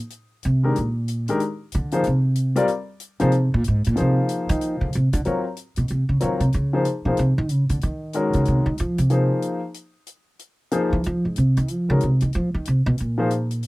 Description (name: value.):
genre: modal jazz.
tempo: 186 BPM.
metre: 4/4.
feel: swing 62% on 8ths.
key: Bb mixolydian, Db major from 5.3 s.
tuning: A4 = 441 Hz.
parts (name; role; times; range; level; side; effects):
hi-hat; drums; 0.1-13.7 s; none; -40 LUFS; left 4 dB; none.
upright bass; bass; 0.5-13.6 s; Ab2 to F3; -20 LUFS; right 1 dB; none.
warm grand piano; accompaniment; 0.6-13.3 s; Eb3 to D5; -22 LUFS; left 2 dB; none.
room: little or no reverb.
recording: dry, close 1970s-style studio recording.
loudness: -19 LUFS.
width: side -20 dB against mid.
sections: 0.0-5.3 A section; 5.3-13.7 A section.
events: upright bass solo 0.0-13.7.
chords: 0.0 Bb9sus4; 5.3 Dbmaj9.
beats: | 0.11 0.43 0.75 1.07 | 1.40 1.72 2.04 2.36 | 2.69 3.01 3.33 3.65 | 3.97 4.29 4.61 4.93 | 5.25 5.57 5.89 6.21 | 6.53 6.86 7.18 7.50 | 7.82 8.14 8.46 8.78 | 9.11 9.43 9.75 10.07 | 10.39 10.72 11.04 11.36 | 11.69 12.01 12.33 12.65 | 12.98 13.30 13.63.